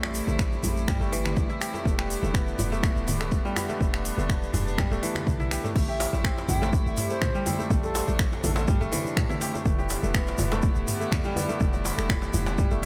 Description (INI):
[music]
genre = afro house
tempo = 123 BPM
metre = 4/4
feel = swing 53% on 16ths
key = A minor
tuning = A4 = 443 Hz
[part]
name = rich chamber string section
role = sustained chords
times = 0.0-12.9 s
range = C3 to E4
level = -37 LUFS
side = equal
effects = sidechain pumping
[part]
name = kora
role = arpeggios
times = 0.0-12.9 s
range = E3 to G4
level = -35 LUFS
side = equal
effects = sidechain pumping, digital delay
[part]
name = warm 808-style bass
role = bass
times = 0.0-12.9 s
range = D1 to A2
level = -33 LUFS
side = equal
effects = sidechain pumping
[part]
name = afro-pop drum kit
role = drums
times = 0.0-12.9 s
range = crash cymbal, finger snaps, hi-hat, toms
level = -35 LUFS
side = equal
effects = none
[part]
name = djembe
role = percussion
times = 0.0-12.7 s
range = none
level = -39 LUFS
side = equal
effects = none
[part]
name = tube shaker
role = percussion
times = 0.0-12.8 s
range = none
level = -42 LUFS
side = equal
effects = none
[part]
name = congas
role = percussion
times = 0.3-12.9 s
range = none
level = -39 LUFS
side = equal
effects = none
[part]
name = electronic kick drum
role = drums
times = 0.4-12.7 s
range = none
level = -29 LUFS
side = equal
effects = overdrive
[part]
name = bright reedy bass bansuri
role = melody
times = 5.9-8.6 s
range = A4 to G5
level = -36 LUFS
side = equal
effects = digital delay
[sound]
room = light reverb, small room ambience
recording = none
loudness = -26 LUFS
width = mono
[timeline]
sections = 0.0-5.8 A section; 5.8-12.9 B section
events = drum fill 5.0-5.8; drop 5.8-12.9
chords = 0.0 Am7; 1.9 Em7; 5.8 Am7; 9.7 Em7